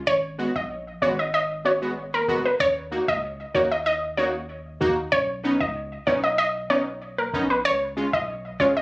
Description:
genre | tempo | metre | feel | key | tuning
dancehall | 95 BPM | 4/4 | straight | Eb minor | A4 = 440 Hz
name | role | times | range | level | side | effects
analog pluck | melody | 0.1-8.8 s | Bb4 to Eb5 | -22 LUFS | equal | chorus, tape echo
warm 808-style bass | bass | 0.1-8.8 s | Gb1 to Eb2 | -36 LUFS | equal | none
synth brass stab | accompaniment | 0.4-8.7 s | Ab3 to Gb4 | -24 LUFS | equal | chorus
room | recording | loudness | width
moderate studio ambience, RT60 0.5 s | recorded on a phone in the room, studio reverb, compression | -21 LUFS | side -24 dB against mid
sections
0.0-2.6 A section; 2.6-8.8 B section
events
none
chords
0.1 Abm7; 2.6 Ebm; 5.1 Badd9; 7.7 Db

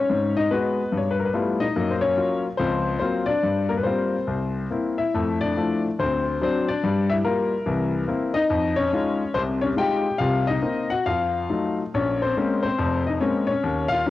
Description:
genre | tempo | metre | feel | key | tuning
solo jazz | 143 BPM | 4/4 | swing 65% on 8ths, rubato | unclear | A4 = 441 Hz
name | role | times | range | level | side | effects
clear baby grand piano | solo | 0.0-14.1 s | F1 to G5 | -21 LUFS | left 2 dB | cassette tape
room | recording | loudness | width
moderate lush hall reverb, RT60 2.5 s | home recording on cassette | -21 LUFS | side -14 dB against mid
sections
0.0-11.9 A section; 11.9-14.1 B section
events
none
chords
0.1 Abm7; 0.9 G13; 1.8 Gbmaj7; 3.4 Gm7; 4.3 C7; 5.1 Fmaj7; 6.0 D7; 6.8 Gm7; 7.7 C7; 8.5 Fm7; 10.2 Cm7b5; 11.1 F7b9; 11.9 Bbm9

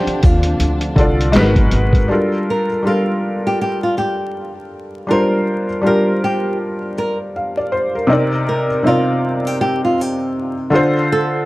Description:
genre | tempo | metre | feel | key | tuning
lo-fi hip hop | 80 BPM | 4/4 | swing 58% on 16ths | G minor | A4 = 440 Hz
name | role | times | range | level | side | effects
nylon-string guitar | melody | 0.0-11.5 s | F4 to Bb4 | -20 LUFS | equal | plate reverb
felt-muted upright piano | accompaniment | 0.0-11.5 s | C3 to F5 | -17 LUFS | equal | plate reverb
dark studio string section | sustained chords | 0.0-2.1 s | Cb3 to D4 | -26 LUFS | equal | none
upright bass | bass | 0.1-2.1 s | Ab1 to Eb2 | -17 LUFS | equal | none
lo-fi sampler-style drum kit | drums | 0.1-2.1 s | handclaps, hi-hat, kick drum, snare drum | -14 LUFS | equal | none
room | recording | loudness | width
moderate studio reverb, RT60 0.5 s | vinyl crackle | -14 LUFS | side -19 dB against mid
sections
0.0-2.1 A section; 2.1-11.5 B section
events
none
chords
0.0 Dm7; 1.3 Abm9; 2.1 Gm9; 8.1 Cm7; 10.7 Dm7

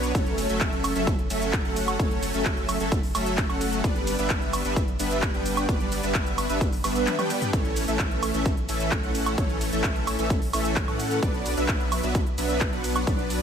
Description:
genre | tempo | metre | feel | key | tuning
EDM, festival progressive house | 130 BPM | 4/4 | straight | unclear | A4 = 440 Hz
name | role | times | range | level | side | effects
supersaw chords | riff | 0.0-13.4 s | E3 to G5 | -26 LUFS | equal | analog chorus, sidechain pumping, digital delay
saturated sub bass | bass | 0.0-13.4 s | F#1 to A2 | -32 LUFS | equal | sidechain pumping
big-room dance drum kit | drums | 0.0-13.4 s | handclaps, hi-hat, ride cymbal, shaker, toms, woodblock | -31 LUFS | right 1 dB | none
electronic kick drum | drums | 0.1-13.2 s | none | -26 LUFS | equal | none
room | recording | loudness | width
light reverb | none | -23 LUFS | side -7 dB against mid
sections
0.0-13.4 A section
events
drum fill 7.1-7.5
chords
0.1 F#m; 3.8 G; 7.5 A; 11.2 Bm

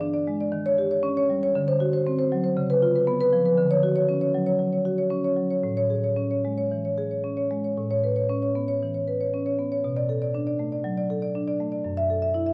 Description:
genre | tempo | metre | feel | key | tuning
classical, contemporary piece for solo marimba | 117 BPM | 4/4 | rubato | A major | A4 = 442 Hz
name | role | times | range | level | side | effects
marimba with medium mallets | solo | 0.0-12.5 s | F#2 to E5 | -25 LUFS | equal | none
room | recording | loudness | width
wet stone room reverb, RT60 1.3 s | worn, warbling old tape, cassette tape, warbly pitch drift | -25 LUFS | mono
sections
0.0-7.8 A section; 7.8-12.5 B section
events
none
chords
0.0 E7; 0.5 D#7; 1.6 D7; 2.6 C#7; 3.6 Dmaj7; 5.6 Amaj7; 7.8 Aadd9; 9.8 Bm7; 11.8 F#m7

